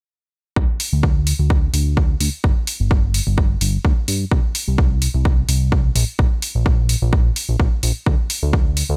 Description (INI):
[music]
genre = piano house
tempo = 128 BPM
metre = 4/4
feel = swing 54% on 16ths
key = unclear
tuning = A4 = 439 Hz
[part]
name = fat analog bass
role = bass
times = 0.6-9.0 s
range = G1 to G2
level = -21 LUFS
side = equal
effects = sidechain pumping
[part]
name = electronic kick drum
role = drums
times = 0.6-8.6 s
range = none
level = -19 LUFS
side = equal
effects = overdrive
[part]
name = electronic hi-hat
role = drums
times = 0.8-8.9 s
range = none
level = -26 LUFS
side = equal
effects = overdrive
[sound]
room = little or no reverb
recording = bright 1980s-style digital production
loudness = -18 LUFS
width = mono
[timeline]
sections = 0.6-9.0 A section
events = filter sweep on analog synth bass 0.6-9.0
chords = none